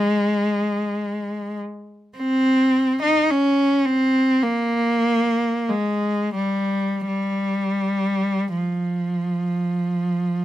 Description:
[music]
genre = classical, free, expressive piece for unaccompanied cello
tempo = 40-54 BPM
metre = 4/4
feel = rubato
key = F minor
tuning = A4 = 441 Hz
[part]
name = rich cello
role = solo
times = 0.0-10.4 s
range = F3 to Eb4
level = -19 LUFS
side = equal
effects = none
[sound]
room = little or no reverb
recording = close, detailed microphones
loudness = -19 LUFS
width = side -13 dB against mid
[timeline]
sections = 0.0-10.4 A section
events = none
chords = none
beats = 1.08 | 2.19 3.31 4.43 5.67 | 7.06 8.54 9.98

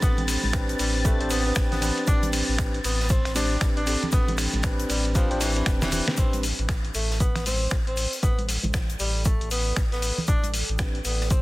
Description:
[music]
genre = deep house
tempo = 117 BPM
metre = 4/4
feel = swing 61% on 16ths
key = A minor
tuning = A4 = 440 Hz
[part]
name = breathy tenor saxophone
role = melody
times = 0.0-11.4 s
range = E3 to D4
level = -32 LUFS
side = equal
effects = vintage 12-bit sampler grit, analog delay
[part]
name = warm analog pad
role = sustained chords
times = 0.0-6.2 s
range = C4 to A6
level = -35 LUFS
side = equal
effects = chorus, tremolo, sidechain pumping
[part]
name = tine electric piano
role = stabs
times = 0.0-6.4, 10.8-11.0 s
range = C4 to C5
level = -30 LUFS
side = equal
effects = sidechain pumping, tape echo
[part]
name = sub bass with octave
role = bass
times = 0.0-11.4 s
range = E1 to A1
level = -28 LUFS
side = equal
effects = sidechain pumping
[part]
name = dusty soul sampler-style drum kit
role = drums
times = 0.0-11.4 s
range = finger snaps, hi-hat, ride cymbal, snare drum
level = -29 LUFS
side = equal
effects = soft clipping on snare
[part]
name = electronic kick drum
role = drums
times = 0.0-11.4 s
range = none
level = -23 LUFS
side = equal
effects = none
[part]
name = modern studio drum kit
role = drums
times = 0.0-11.4 s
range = hi-hat, shaker, snare drum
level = -36 LUFS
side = left 2 dB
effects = sidechain pumping on hats, high-pass filter on hats, soft clipping on snare, high-pass filter on snare, sidechain pumping on perc, high-pass filter on perc, high-pass filter on room
[part]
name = congas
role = percussion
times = 0.2-10.5 s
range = none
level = -34 LUFS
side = right 2 dB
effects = none
[part]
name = ethereal airy pad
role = texture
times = 8.1-11.4 s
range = A4 to G5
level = -44 LUFS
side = right 2 dB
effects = ensemble chorus, built-in reverb, sidechain pumping
[sound]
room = small room ambience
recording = dense, heavily limited modern master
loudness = -22 LUFS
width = side -19 dB against mid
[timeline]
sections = 0.0-6.2 A section; 6.2-11.4 B section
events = drop 0.0-6.2; drum fill 5.8-6.2; fade-in on ambient pad 6.2-11.4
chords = 0.0 Am11; 6.2 A9sus4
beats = | 0.02 0.54 1.05 1.56 | 2.08 2.59 3.10 3.61 | 4.13 4.64 5.15 5.67 | 6.18 6.69 7.20 7.72 | 8.23 8.74 9.26 9.77 | 10.28 10.79 11.31

